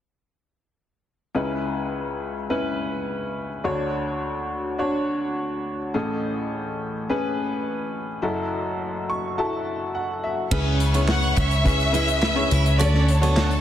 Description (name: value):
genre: piano-driven pop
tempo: 105 BPM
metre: 4/4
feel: straight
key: unclear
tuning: A4 = 440 Hz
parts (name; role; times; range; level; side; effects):
- bright upright piano; accompaniment; 1.3-13.6 s; F#1 to C#6; -25 LUFS; left 1 dB; none
- warm studio violin section; second line; 10.5-13.6 s; A4 to C#6; -32 LUFS; right 2 dB; tape echo
- picked steel-string acoustic guitar; riff; 10.5-13.5 s; B3 to E4; -30 LUFS; right 8 dB; none
- vintage muted fingered electric bass; bass; 10.5-13.6 s; C#2 to D2; -21 LUFS; equal; none
- modern studio drum kit; drums; 10.5-13.6 s; crash cymbal, handclaps, hi-hat, kick drum, snare drum; -26 LUFS; equal; none
- warm studio violin section; melody; 11.1-13.6 s; C#5 to F#5; -24 LUFS; left 1 dB; none
room: moderate lush hall reverb, RT60 1.9 s, studio ambience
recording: dense, heavily limited modern master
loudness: -22 LUFS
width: side -11 dB against mid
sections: 1.4-10.5 A section; 10.5-13.6 B section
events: upright piano fill 8.8-10.5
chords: 1.4 C#m7; 3.7 Dmaj7; 5.9 Amaj7; 8.2 F#m7; 10.5 C#m7; 12.8 Dmaj7